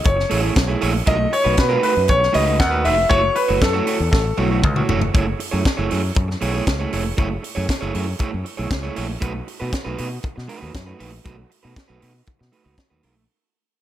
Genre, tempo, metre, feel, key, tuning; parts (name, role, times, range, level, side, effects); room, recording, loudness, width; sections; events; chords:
disco; 118 BPM; 4/4; straight; F# dorian; A4 = 441 Hz
warm baby grand piano; melody; 0.0-4.6 s; A4 to F#5; -19 LUFS; left 1 dB; slapback echo
electric guitar at the edge of break-up; accompaniment; 0.0-13.2 s; A3 to C#5; -24 LUFS; right 5 dB; spring reverb
tight funk drum kit; drums; 0.0-13.2 s; hi-hat, kick drum, snare drum, toms; -22 LUFS; equal
overdriven fingered electric bass; bass; 0.1-13.3 s; E#1 to B2; -23 LUFS; equal
light reverb, small room ambience; -17 LUFS; side -12 dB against mid
0.0-5.1 A section; 5.1-13.3 B section
drum fill 4.1-5.1; fade-out 5.1-13.3
0.0 F#m9; 1.1 B7; 3.1 F#m7; 5.1 F#m9; 9.2 B7